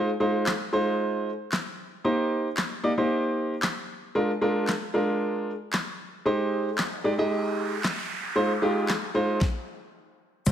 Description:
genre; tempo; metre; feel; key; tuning
dance-pop; 114 BPM; 4/4; straight; unclear; A4 = 445 Hz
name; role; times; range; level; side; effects
warm grand piano; accompaniment; 0.0-10.5 s; Ab3 to Eb5; -25 LUFS; right 1 dB; sidechain pumping
pop drum kit; drums; 0.5-10.5 s; crash cymbal, handclaps, hi-hat, kick drum, snare drum; -29 LUFS; left 1 dB; none
noise sweep; sound effects; 6.7-9.4 s; none; -35 LUFS; right 2 dB; none
vintage slap bass; bass; 10.5 s; C2; -21 LUFS; left 1 dB; sidechain pumping
egg shaker; percussion; 10.5 s; none; -32 LUFS; left 11 dB; none
room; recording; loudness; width
moderate lush hall reverb, RT60 1.7 s, digital ambience; none; -24 LUFS; side -9 dB against mid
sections
0.0-10.5 A section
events
noise sweep 6.7-10.5; stop 9.4-10.5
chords
0.0 Fm7; 2.0 Cm7; 4.2 Bb7; 6.3 Abmaj7; 8.4 Fm7

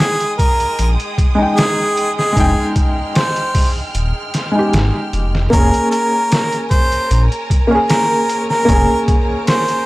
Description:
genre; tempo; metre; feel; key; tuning
trip hop; 76 BPM; 4/4; straight; F minor; A4 = 438 Hz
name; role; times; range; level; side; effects
clear harmonica; melody; 0.0-9.9 s; Ab4 to C5; -18 LUFS; equal; tape echo
clear upright piano; accompaniment; 0.0-9.9 s; Ab3 to G5; -18 LUFS; equal; tremolo
bright studio violin section; sustained chords; 0.0-9.9 s; Ab3 to F6; -26 LUFS; right 2 dB; none
trip hop sampler-style drum kit; drums; 0.0-9.9 s; hi-hat, kick drum, snare drum; -16 LUFS; equal; studio ambience
dark detuned saw bass; bass; 0.8-8.9 s; Eb1 to Bb1; -15 LUFS; equal; none
room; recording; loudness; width
small room ambience; dry, gritty hardware recording, transformer saturation, vinyl crackle; -13 LUFS; side -19 dB against mid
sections
0.0-9.9 A section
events
none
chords
0.0 Fm9; 5.5 Bbm7/F

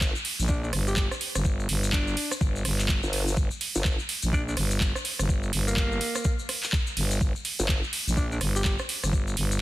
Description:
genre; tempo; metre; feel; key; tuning
bass house; 125 BPM; 4/4; swing 60% on 16ths; G minor; A4 = 440 Hz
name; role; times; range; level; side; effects
formant-sweep wobble bass; bass; 0.0-0.1, 3.0-4.0, 7.6-7.8 s; G1; -28 LUFS; equal; chorus, overdrive, sidechain pumping
electronic kick drum; drums; 0.0-9.2 s; none; -27 LUFS; equal; overdrive, studio reverb
garage drum kit; drums; 0.0-9.5 s; handclaps, hi-hat, rim click; -30 LUFS; right 2 dB; overdrive, studio reverb
maracas; percussion; 0.0-9.6 s; none; -36 LUFS; left 4 dB; none
growling FM bass; bass; 0.4-9.6 s; G1 to Bb1; -27 LUFS; equal; tube saturation, sidechain pumping
breathy alto saxophone; melody; 0.5-8.7 s; Bb3 to G4; -35 LUFS; equal; vintage 12-bit sampler grit, ping-pong delay
room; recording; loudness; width
digital ambience; dense, heavily limited modern master; -24 LUFS; side -16 dB against mid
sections
0.0-9.6 A section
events
none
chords
none

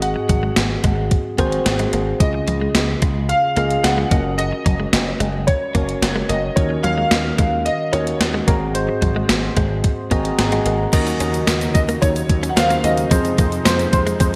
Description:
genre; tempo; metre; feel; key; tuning
1980s-style pop; 110 BPM; 4/4; straight; unclear; A4 = 441 Hz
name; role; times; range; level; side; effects
warm concert grand piano; melody; 0.0-14.4 s; Bb4 to Gb5; -25 LUFS; equal; analog chorus, digital delay
tine electric piano; accompaniment; 0.0-14.4 s; Ab2 to Bb5; -25 LUFS; equal; analog chorus
slap bass with an envelope filter; bass; 0.0-14.4 s; Gb1 to F2; -26 LUFS; equal; none
gated 80s digital drum machine; drums; 0.0-14.3 s; crash cymbal, hi-hat, kick drum, snare drum; -21 LUFS; equal; gated reverb, gated reverb snare, overdrive
direct-recorded clean electric guitar; riff; 0.2-14.3 s; F3 to Eb4; -30 LUFS; equal; analog chorus
brassy analog pad; sustained chords; 10.9-14.4 s; C3 to Eb4; -31 LUFS; equal; none
tube shaker; percussion; 10.9-14.3 s; none; -38 LUFS; equal; none
room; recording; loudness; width
moderate lush hall reverb, RT60 1.8 s; bright 1980s-style digital production; -18 LUFS; mono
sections
0.0-10.9 A section; 10.9-14.4 B section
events
tine electric piano fill 9.8-10.9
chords
0.0 Ab7; 2.2 Dbadd9; 4.1 Gb6; 6.6 Ebm7; 8.5 Ab7; 10.9 Ebm7; 13.1 Fm7

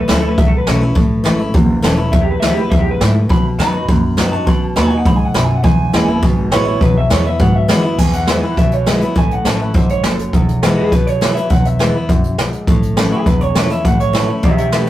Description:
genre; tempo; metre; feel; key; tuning
rockabilly; 205 BPM; 4/4; straight; E major; A4 = 441 Hz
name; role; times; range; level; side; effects
electric guitar through a small old amp; melody; 0.0-14.9 s; E4 to B5; -21 LUFS; right 1 dB; analog delay
picked steel-string acoustic guitar; accompaniment; 0.0-14.9 s; E2 to F#4; -19 LUFS; left 1 dB; none
upright bass; bass; 0.0-14.8 s; E1 to B2; -18 LUFS; equal; none
jazz brush drum kit; drums; 0.1-14.9 s; crash cymbal, hi-hat, kick drum, snare drum; -15 LUFS; equal; none
room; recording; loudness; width
moderate studio reverb, RT60 0.6 s; rough rehearsal-room recording, tube saturation; -12 LUFS; side -14 dB against mid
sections
0.0-8.0 A section; 8.0-14.9 B section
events
clean electric guitar solo 0.0-8.0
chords
0.0 E; 3.3 B; 5.6 E; 9.2 A; 10.3 E; 12.7 A

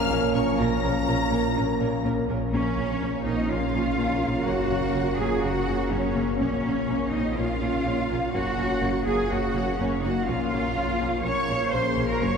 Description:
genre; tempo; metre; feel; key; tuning
cinematic, hybrid orchestral and electronic film score; 124 BPM; 4/4; straight; Bb minor; A4 = 441 Hz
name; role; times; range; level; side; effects
clear studio violin section; melody; 0.0-12.4 s; Db5 to Bb6; -37 LUFS; left 5 dB; none
clear symphonic violin section; second line; 0.0-12.4 s; Db5 to Db6; -35 LUFS; left 2 dB; none
dark analog pad; sustained chords; 0.0-12.4 s; Bb3 to Db5; -32 LUFS; equal; chorus
mellow French horn section; sustained chords; 0.0-12.4 s; Bb3 to Bb4; -32 LUFS; left 2 dB; none
warm trombone section; sustained chords; 0.0-12.4 s; Db3 to Bb3; -33 LUFS; right 3 dB; none
phased detuned saw bass; bass; 0.0-12.4 s; Gb1 to Bb1; -33 LUFS; equal; phaser
rich symphonic viola section; accompaniment; 0.1-12.3 s; Bb3 to Bb4; -34 LUFS; equal; none
harp-like synth pluck; arpeggios; 0.1-12.4 s; Gb3 to Bb4; -34 LUFS; left 3 dB; none
clear chamber double bass section; bass; 0.1-12.3 s; Gb1 to Bb1; -33 LUFS; right 1 dB; none
clear symphonic cello section; bass; 0.1-12.4 s; Bb2 to Db5; -28 LUFS; right 2 dB; none
room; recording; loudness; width
wet cathedral reverb, RT60 6.3 s; recorded in a church or concert hall; -22 LUFS; side -6 dB against mid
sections
0.0-2.5 A section; 2.5-12.4 B section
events
none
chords
0.0 Bbm; 4.5 Gb; 6.4 Bbm; 8.3 Gb; 10.3 Bbm

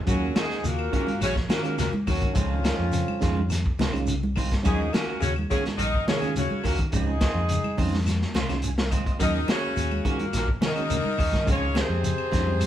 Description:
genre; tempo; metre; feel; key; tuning
afrobeat; 105 BPM; 4/4; straight; Eb dorian; A4 = 440 Hz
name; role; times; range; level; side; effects
percussive tonewheel organ; accompaniment; 0.0-12.5 s; Eb3 to C6; -34 LUFS; right 4 dB; slow rotary speaker, chorus vibrato
clear horn section; melody; 0.1-12.7 s; F3 to Eb5; -30 LUFS; left 1 dB; none
breathy baritone saxophone; second line; 0.1-12.7 s; F2 to Eb3; -35 LUFS; left 4 dB; none
clear alto saxophone; second line; 0.1-12.7 s; Db4 to Bb4; -35 LUFS; right 2 dB; none
clean electric guitar; arpeggios; 0.1-12.6 s; Bb2 to Gb3; -35 LUFS; left 4 dB; none
clean electric guitar; stabs; 0.1-12.5 s; Eb3 to Gb4; -36 LUFS; right 4 dB; none
fingered electric bass; bass; 0.1-12.7 s; Bb1 to Eb3; -28 LUFS; equal; none
crunchy breakbeat drum kit; drums; 0.1-12.7 s; hi-hat, kick drum, snare drum; -27 LUFS; equal; none
shekere; percussion; 0.1-12.7 s; none; -36 LUFS; right 1 dB; none
claves; percussion; 0.4-12.7 s; none; -43 LUFS; left 8 dB; none
congas; percussion; 0.4-12.7 s; none; -33 LUFS; right 2 dB; none
room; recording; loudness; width
moderate studio reverb, RT60 0.9 s; band playing live in one room; -22 LUFS; side -11 dB against mid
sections
0.1-12.7 A section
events
tonewheel organ fill 8.1-9.2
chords
0.1 Ebm7; 2.4 Dbmaj9; 4.6 Ebm7; 6.9 Dbmaj9; 9.2 Ebm7; 11.5 Dbmaj9

